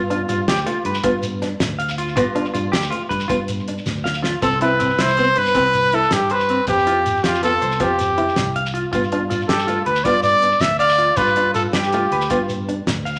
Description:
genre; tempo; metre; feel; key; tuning
highlife guitar band; 107 BPM (dotted quarters); 12/8; straight; unclear; A4 = 441 Hz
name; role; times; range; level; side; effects
fingerpicked acoustic archtop guitar; accompaniment; 0.0-13.0 s; A3 to E4; -27 LUFS; equal; none
electric guitar at the edge of break-up; arpeggios; 0.0-13.2 s; C4 to F5; -26 LUFS; equal; harmonic tremolo
fingered electric bass; bass; 0.0-13.2 s; C2 to G2; -29 LUFS; equal; none
cloth-damped thuddy drum kit; drums; 0.1-13.1 s; hi-hat, kick drum, snare drum; -28 LUFS; equal; none
shekere; percussion; 0.3-13.2 s; none; -34 LUFS; equal; none
clear trumpet; melody; 4.4-12.5 s; F4 to E5; -19 LUFS; equal; none
room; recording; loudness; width
moderate large studio reverb, RT60 1.4 s; none; -19 LUFS; mono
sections
0.0-4.4 A section; 4.4-13.2 B section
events
drum fill 3.9-4.4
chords
0.0 G7; 4.4 Cmaj7; 6.7 Fsus2; 8.9 G7

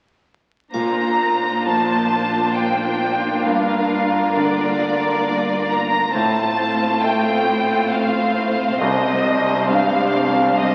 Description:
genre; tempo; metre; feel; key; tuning
cinematic, emotional film score for orchestra; 67 BPM; 3/4; rubato; Bb major; A4 = 441 Hz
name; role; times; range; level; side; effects
warm symphonic violin section; melody; 0.7-10.7 s; D5 to Bb5; -22 LUFS; equal; none
warm symphonic violin section; second line; 0.7-10.7 s; D4 to C5; -27 LUFS; equal; none
bright concert grand piano; accompaniment; 0.7-10.7 s; C2 to A3; -25 LUFS; equal; none
warm symphonic viola section; accompaniment; 0.7-10.7 s; G3 to D4; -26 LUFS; equal; none
warm symphonic cello section; bass; 0.7-10.7 s; G2 to C3; -30 LUFS; equal; none
triangle; percussion; 0.7-2.5 s; none; -48 LUFS; equal; none
room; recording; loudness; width
wet scoring stage reverb, RT60 1.9 s; very old 78 rpm record, vinyl crackle; -19 LUFS; mono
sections
0.7-10.7 A section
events
none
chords
0.7 Bbadd9; 3.5 Gm7; 6.1 F/A; 8.8 Cmadd9

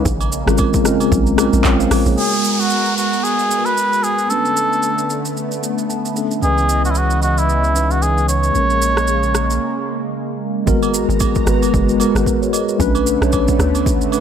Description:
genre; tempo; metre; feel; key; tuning
amapiano; 113 BPM; 4/4; swing 58% on 16ths; unclear; A4 = 436 Hz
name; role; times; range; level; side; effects
mellow tine electric piano; accompaniment; 0.0-14.2 s; E3 to A5; -19 LUFS; left 2 dB; medium stereo tremolo
lush unison pad; sustained chords; 0.0-14.2 s; C#3 to A#5; -23 LUFS; right 2 dB; chorus, phaser, sidechain pumping
tight log drum bass; bass; 0.0-2.2, 10.7-14.1 s; F#1 to D2; -19 LUFS; equal; none
deep house drum kit; drums; 0.1-14.2 s; handclaps, hi-hat, kick drum, rim click, shaker; -21 LUFS; equal; overdrive
agogo bells and woodblock; percussion; 0.2-2.1, 10.8-14.2 s; none; -29 LUFS; right 10 dB; none
trumpet with cup mute; melody; 2.2-10.1 s; E4 to C#5; -18 LUFS; right 1 dB; ping-pong delay
downlifter; sound effects; 2.2-6.4 s; none; -24 LUFS; equal; none
punchy sub bass; bass; 6.4-9.6 s; A#1 to C#2; -18 LUFS; equal; none
room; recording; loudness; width
light reverb; none; -14 LUFS; side -8 dB against mid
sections
0.0-2.2 A section; 2.2-10.7 B section; 10.7-14.2 C section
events
drop 0.0-2.2; tine electric piano fill 5.6-6.4; break 9.6-10.7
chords
0.1 A#m9; 2.2 G#m9; 4.3 Bm9; 6.4 C#m9; 8.5 A#m7; 10.7 G#m9; 12.8 Bm9

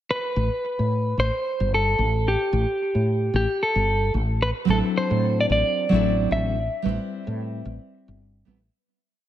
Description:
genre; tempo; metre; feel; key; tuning
sunset chillout; 111 BPM; 4/4; swing 57% on 16ths; A dorian; A4 = 441 Hz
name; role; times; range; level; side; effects
clean electric guitar; melody; 0.1-8.2 s; G4 to E5; -24 LUFS; equal; spring reverb, tape echo
woody fretless electric bass; bass; 0.4-8.7 s; G1 to A2; -23 LUFS; equal; wide subtle chorus
nylon-string guitar; accompaniment; 4.7-8.6 s; F#3 to C5; -24 LUFS; moving between left 3 dB and right 4 dB; auto-pan
room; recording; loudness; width
light reverb, small room ambience; none; -20 LUFS; side -12 dB against mid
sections
0.1-8.7 groove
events
fade-out 5.9-8.7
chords
0.1 A7sus2; 4.4 D9/A; 6.6 Cmaj7/A

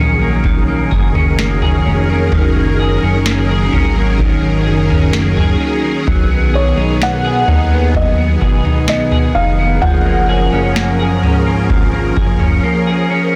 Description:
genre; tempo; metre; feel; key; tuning
dream pop; 64 BPM; 4/4; straight; F# major; A4 = 440 Hz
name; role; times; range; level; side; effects
string machine, violas; sustained chords; 0.0-13.4 s; D#3 to A#4; -20 LUFS; equal; phaser, ensemble chorus, shimmer reverb
semi-hollow electric guitar; arpeggios; 0.0-13.4 s; D#3 to G#4; -22 LUFS; equal; lush chorus, tape echo, shimmer reverb
chorused synth bass; bass; 0.0-12.6 s; E#1 to D#2; -18 LUFS; equal; none
booming analog drum machine; drums; 0.4-12.6 s; kick drum, snare drum, toms; -19 LUFS; equal; none
felt-muted upright piano; melody; 6.6-12.6 s; C#5 to F#5; -22 LUFS; equal; tape echo, shimmer reverb
room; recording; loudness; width
light reverb; dense, heavily limited modern master; -14 LUFS; mono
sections
0.0-13.4 A section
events
none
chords
0.0 F#69; 6.1 B6; 9.8 F#maj9

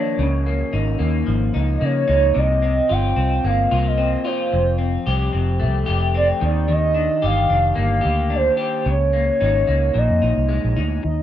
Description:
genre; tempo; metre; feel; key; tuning
indie pop, bedroom pop; 111 BPM; 4/4; swing 55% on 16ths; unclear; A4 = 440 Hz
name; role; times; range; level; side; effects
hollow clarinet-like synth lead; melody; 0.0-11.2 s; C5 to G5; -21 LUFS; right 1 dB; lush chorus
electric guitar through a small old amp; accompaniment; 0.0-11.2 s; F2 to G4; -23 LUFS; left 3 dB; lush chorus, warbly pitch drift, low-pass filter
vintage muted fingered electric bass; bass; 0.2-11.2 s; F1 to Db3; -20 LUFS; equal; none
room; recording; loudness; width
digital ambience; rough home demo mix; -17 LUFS; side -11 dB against mid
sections
0.0-11.0 A section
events
none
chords
0.2 Db69; 2.4 Cm7; 4.5 Fadd9; 6.4 F13sus4; 8.9 Dbsus2; 10.0 Bb7sus4

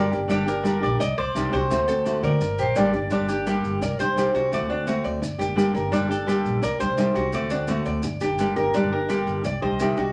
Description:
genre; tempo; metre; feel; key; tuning
latin, Cuban son and guajira; 170 BPM; 4/4; straight; G harmonic minor; A4 = 443 Hz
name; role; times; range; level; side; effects
Cuban tres; melody; 0.0-10.1 s; G4 to Eb5; -30 LUFS; equal; none
reedy silver concert flute; second line; 0.0-0.2, 2.6-3.1 s; Bb4 to D5; -29 LUFS; equal; none
nylon-string guitar; accompaniment; 0.0-10.1 s; C3 to G4; -26 LUFS; equal; none
Cuban tres; arpeggios; 0.0-10.1 s; D4 to D5; -32 LUFS; equal; none
upright bass; bass; 0.0-10.1 s; G1 to D3; -32 LUFS; equal; none
maracas; percussion; 0.1-10.1 s; none; -45 LUFS; equal; none
room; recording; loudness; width
wet club reverb, RT60 0.6 s; none; -24 LUFS; mono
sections
0.0-3.1 A section; 3.1-10.1 B section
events
Cuban tres solo 3.1-10.1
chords
0.0 Gm; 1.0 Cmadd9; 1.7 D7; 2.4 Gm; 3.8 Cmadd9; 4.5 D7; 5.2 Gm; 6.6 Cmadd9; 7.3 D7; 8.0 Gm; 9.4 Cmadd9

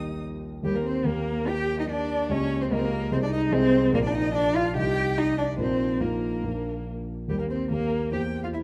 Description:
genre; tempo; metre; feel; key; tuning
quick classical-period movement for piano trio; 145 BPM; 4/4; straight; Eb major; A4 = 440 Hz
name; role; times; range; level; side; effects
warm violin; melody; 0.0-8.6 s; G4 to Eb6; -39 LUFS; equal; none
rich cello; second line; 0.0-8.6 s; G3 to G4; -28 LUFS; equal; none
dark concert grand piano; accompaniment; 0.0-8.6 s; Bb1 to Eb5; -30 LUFS; equal; none
room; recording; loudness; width
moderate concert hall reverb, RT60 1.9 s; close, detailed microphones, faint mains hum; -26 LUFS; mono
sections
0.6-8.6 A section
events
none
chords
0.0 Eb; 2.3 Eb7/Db; 3.1 Ab/C; 3.9 Bb; 4.8 Cm; 5.6 Bbsus4; 6.4 Bb; 7.3 Eb; 8.1 C7/E

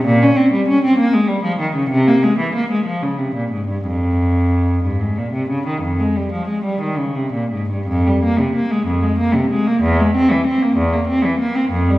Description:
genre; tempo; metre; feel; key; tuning
classical, baroque-style suite movement for unaccompanied cello; 54-66 BPM (dotted quarters); 12/8; rubato; F minor; A4 = 443 Hz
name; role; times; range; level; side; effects
rich cello; solo; 0.0-12.0 s; E2 to Db4; -15 LUFS; equal; none
room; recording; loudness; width
wet recital hall reverb, RT60 1.5 s; heard from further back in the room; -15 LUFS; side -17 dB against mid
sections
0.0-7.9 A section; 7.9-12.0 B section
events
none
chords
none

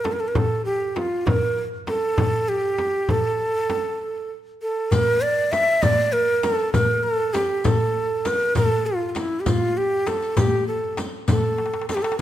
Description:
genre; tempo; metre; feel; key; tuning
Arabic maqam ensemble; 66 BPM (dotted quarters); 6/8; straight; A maqam hijaz; A4 = 442 Hz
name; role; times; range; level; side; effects
breathy bright ney; melody; 0.0-12.2 s; E4 to E5; -21 LUFS; right 1 dB; none
darbuka; percussion; 0.0-12.2 s; none; -26 LUFS; left 3 dB; none
frame drum; percussion; 0.1-12.0 s; none; -26 LUFS; right 1 dB; none
riq; percussion; 4.9-12.2 s; none; -33 LUFS; left 3 dB; none
room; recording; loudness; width
light reverb; minimal, uncompressed stereo recording; -19 LUFS; side -12 dB against mid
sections
0.0-4.9 A section; 4.9-12.2 B section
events
stop 4.0-4.9; drum fill 11.6-12.2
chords
none

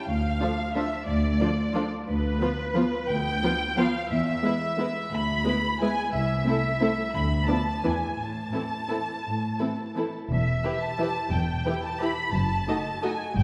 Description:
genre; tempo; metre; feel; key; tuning
classical; 160-192 BPM; 3/4; rubato; A minor, E minor from 10.3 s; A4 = 440 Hz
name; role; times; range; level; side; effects
rich studio violin section; melody; 0.0-13.4 s; B4 to B5; -32 LUFS; equal; none
dark studio cello section; bass; 0.1-13.4 s; C2 to A2; -31 LUFS; equal; none
warm studio violin section; second line; 0.4-13.1 s; D4 to D#5; -36 LUFS; equal; none
rich studio viola section; accompaniment; 0.4-13.1 s; E3 to E4; -32 LUFS; equal; none
rich studio double bass section; bass; 10.3-13.4 s; E1 to G1; -31 LUFS; equal; none
room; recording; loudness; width
wet scoring stage reverb, RT60 1.9 s; heard from further back in the room; -27 LUFS; mono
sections
0.0-10.3 A section; 10.3-13.4 B section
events
none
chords
0.1 Dm; 2.1 Bdim/D; 4.1 E; 5.1 E7/D (rootless); 6.1 Am/C; 7.1 Bm/D; 7.8 E; 8.2 Am; 10.3 Em; 12.3 D#dim/F#

